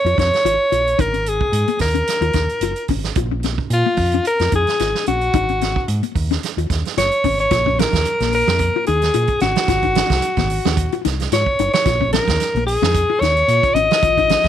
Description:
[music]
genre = afrobeat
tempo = 110 BPM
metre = 4/4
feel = swing 54% on 16ths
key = Bb minor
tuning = A4 = 444 Hz
[part]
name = bright alto saxophone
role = melody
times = 0.0-14.5 s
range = F4 to Eb5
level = -17 LUFS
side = left 1 dB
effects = none
[part]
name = deep dub fingered electric bass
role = bass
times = 0.0-14.5 s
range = Gb1 to Bb2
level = -21 LUFS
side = right 1 dB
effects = none
[part]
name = handpan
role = arpeggios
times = 0.1-14.4 s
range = Bb3 to F4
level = -24 LUFS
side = left 15 dB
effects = slapback echo
[part]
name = vintage drum kit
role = drums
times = 0.1-14.5 s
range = hi-hat, kick drum, snare drum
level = -22 LUFS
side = right 6 dB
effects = none
[sound]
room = little or no reverb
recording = 1960s-style stereo with parts hard left and right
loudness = -15 LUFS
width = side -10 dB against mid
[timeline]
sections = 0.0-7.5 A section; 7.5-14.5 B section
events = none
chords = 0.0 Bbm; 1.0 Absus4; 3.2 Bb7(no3); 5.3 Ab7sus4; 7.5 Bb7(no3); 9.7 Ab7sus4; 11.9 Bbm7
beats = 0.45 | 0.99 1.54 2.08 2.62 | 3.17 3.71 4.26 4.80 | 5.34 5.89 6.43 6.98 | 7.52 8.06 8.61 9.15 | 9.69 10.23 10.78 11.32 | 11.86 12.40 12.94 13.49 | 14.03

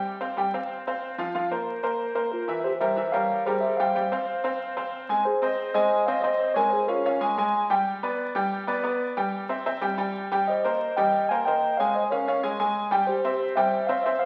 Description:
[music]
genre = latin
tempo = 184 BPM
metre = 4/4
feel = straight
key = F harmonic minor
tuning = A4 = 440 Hz
[part]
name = bright upright piano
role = accompaniment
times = 0.0-14.3 s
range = E3 to Ab5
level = -28 LUFS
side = equal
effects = none
[part]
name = mellow tine electric piano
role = melody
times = 2.3-7.2, 10.5-14.3 s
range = F4 to Ab5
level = -28 LUFS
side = equal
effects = none
[sound]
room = wet large studio reverb, RT60 1.2 s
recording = very old 78 rpm record, vinyl crackle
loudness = -26 LUFS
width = mono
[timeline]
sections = 0.0-5.3 A section; 5.3-14.3 B section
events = none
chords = 0.0 Fsus2; 1.3 Bbsus2; 2.6 C7; 4.0 Fmadd9; 5.3 Ab; 6.6 Bbm7; 7.9 G; 9.2 C; 10.5 Eb6; 11.8 Bbm7; 13.1 C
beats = | 0.03 0.36 0.68 1.01 | 1.34 1.66 1.99 2.32 | 2.64 2.97 3.30 3.62 | 3.95 4.28 4.61 4.93 | 5.26 5.58 5.91 6.24 | 6.56 6.89 7.22 7.54 | 7.87 8.19 8.52 8.85 | 9.17 9.50 9.82 10.15 | 10.47 10.80 11.13 11.45 | 11.78 12.11 12.43 12.76 | 13.08 13.41 13.73 14.06

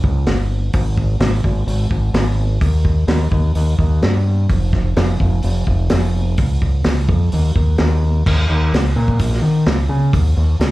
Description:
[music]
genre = classic rock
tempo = 128 BPM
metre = 4/4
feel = straight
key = unclear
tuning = A4 = 439 Hz
[part]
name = growling fingered electric bass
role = bass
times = 0.0-10.7 s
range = F1 to Eb3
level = -15 LUFS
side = equal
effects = overdrive
[part]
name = vintage drum kit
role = drums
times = 0.0-10.7 s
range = crash cymbal, hi-hat, kick drum, snare drum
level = -19 LUFS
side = equal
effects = none
[sound]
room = little or no reverb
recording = live gig heard through the venue's PA, club reverb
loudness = -14 LUFS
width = side -18 dB against mid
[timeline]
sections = 0.0-8.3 A section; 8.3-10.7 B section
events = none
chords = none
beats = 0.27 | 0.74 1.21 1.68 2.15 | 2.62 3.09 3.56 4.03 | 4.50 4.97 5.44 5.91 | 6.38 6.85 7.32 7.78 | 8.25 8.72 9.19 9.66 | 10.13 10.60

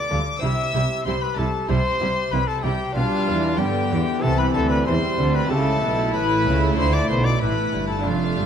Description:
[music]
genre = classical, baroque-style concerto movement with solo episodes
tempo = 94 BPM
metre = 4/4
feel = straight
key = C major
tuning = A4 = 437 Hz
[part]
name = warm chamber violin section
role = melody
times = 0.0-8.5 s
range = F5 to E6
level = -30 LUFS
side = left 6 dB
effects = none
[part]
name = warm trumpet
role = melody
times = 0.0-8.5 s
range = F4 to E5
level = -26 LUFS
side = left 2 dB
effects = none
[part]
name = lute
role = accompaniment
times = 0.0-8.5 s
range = F2 to G4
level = -29 LUFS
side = equal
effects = none
[part]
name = warm chamber violin section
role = second line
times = 0.1-8.5 s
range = B3 to F4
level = -27 LUFS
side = left 2 dB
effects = none
[part]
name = warm studio viola section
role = accompaniment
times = 0.1-8.5 s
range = D3 to A3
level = -30 LUFS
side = right 2 dB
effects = none
[part]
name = rich chamber cello section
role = bass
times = 0.1-8.5 s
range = F2 to G3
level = -26 LUFS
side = right 2 dB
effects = none
[part]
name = rich chamber double bass section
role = bass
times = 0.1-8.5 s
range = F1 to G2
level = -26 LUFS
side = right 2 dB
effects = none
[sound]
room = moderate recital hall reverb, RT60 1.6 s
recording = dark, warm production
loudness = -19 LUFS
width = side -8 dB against mid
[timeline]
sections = 0.0-8.5 A section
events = none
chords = 0.4 C; 3.0 G7; 4.2 C; 5.5 A7; 6.8 Dm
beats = | 0.43 1.06 1.69 2.32 | 2.96 3.59 4.23 4.86 | 5.50 6.13 6.77 7.41 | 8.04

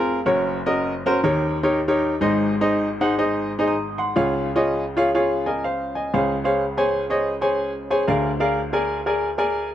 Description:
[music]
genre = gospel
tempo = 123 BPM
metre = 4/4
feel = swing 64% on 8ths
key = Db major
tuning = A4 = 437 Hz
[part]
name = clear upright piano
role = solo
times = 0.0-9.7 s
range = F1 to Eb6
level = -19 LUFS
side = equal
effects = none
[sound]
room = light reverb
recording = none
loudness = -19 LUFS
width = side -11 dB against mid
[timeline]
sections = 0.0-6.1 A section; 6.1-9.7 B section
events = upright piano fill 5.1-6.1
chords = 0.3 Gb; 1.2 Eb7; 2.2 Ab; 4.2 Db; 6.1 Dbmaj7; 8.1 Bb7/D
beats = | 0.26 0.75 1.24 1.73 | 2.21 2.70 3.19 3.68 | 4.17 4.65 5.14 5.63 | 6.12 6.61 7.10 7.59 | 8.08 8.57 9.06 9.55

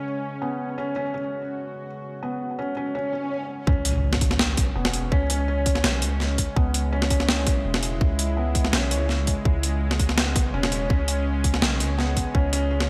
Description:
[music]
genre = half-time drum and bass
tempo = 166 BPM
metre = 4/4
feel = half-time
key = C# minor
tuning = A4 = 443 Hz
[part]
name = bowed-like drone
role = sustained chords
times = 0.0-12.9 s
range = C#3 to F#4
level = -35 LUFS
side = equal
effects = built-in reverb, sidechain pumping
[part]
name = felt-muted upright piano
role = arpeggios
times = 0.0-12.9 s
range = B3 to C#5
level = -32 LUFS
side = equal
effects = vintage 12-bit sampler grit, digital delay
[part]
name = swell and impact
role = sound effects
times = 3.1-5.1 s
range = none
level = -34 LUFS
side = equal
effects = none
[part]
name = long sustained 808-style bass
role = bass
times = 3.7-12.9 s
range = E1 to C#2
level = -27 LUFS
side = equal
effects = tube saturation
[part]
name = electronic kick drum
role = drums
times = 3.7-12.4 s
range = none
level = -25 LUFS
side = equal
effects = none
[part]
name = boom bap sampler-style drum kit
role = drums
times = 3.9-12.9 s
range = hi-hat, snare drum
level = -27 LUFS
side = equal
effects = overdrive, gated reverb
[sound]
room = light reverb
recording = bright 1980s-style digital production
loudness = -24 LUFS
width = mono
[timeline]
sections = 0.0-3.7 A section; 3.7-12.9 B section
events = swell 3.1-3.7; drop 3.7-12.9; impact 3.7-5.1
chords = 0.0 C#5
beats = 0.06 0.42 | 0.78 1.14 1.50 1.87 | 2.23 2.59 2.95 3.31 | 3.67 4.03 4.40 4.76 | 5.12 5.48 5.84 6.20 | 6.56 6.93 7.29 7.65 | 8.01 8.37 8.73 9.09 | 9.46 9.82 10.18 10.54 | 10.90 11.26 11.62 11.99 | 12.35 12.71

